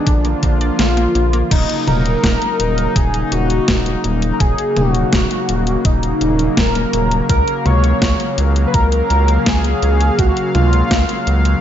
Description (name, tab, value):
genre	synthwave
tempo	83 BPM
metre	4/4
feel	straight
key	Eb minor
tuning	A4 = 440 Hz
part	wide unison lead	melody	0.0-11.2 s	D4 to Db5	-19 LUFS	equal	analog chorus, ping-pong delay
part	warm analog pad	sustained chords	0.0-11.6 s	Db3 to F5	-21 LUFS	left 3 dB	chorus, sidechain pumping
part	analog pluck	arpeggios	0.0-1.5 s	D3 to D5	-27 LUFS	right 1 dB	chorus, cassette tape, ping-pong delay
part	round analog bass	bass	0.1-11.6 s	Eb1 to Db2	-17 LUFS	equal	tube saturation
part	clean 12-bit digital drum machine	drums	0.1-11.6 s	crash cymbal, hi-hat, snare drum, toms	-20 LUFS	equal	overdrive, gated reverb
part	electronic kick drum	drums	0.1-11.1 s	none	-18 LUFS	equal	none
room	light reverb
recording	nothing above 7.7 kHz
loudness	-13 LUFS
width	side -10 dB against mid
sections	0.0-1.5 A section; 1.5-11.6 B section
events	none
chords	0.1 Bb; 1.5 Ebm7; 7.3 Gbmaj7/Db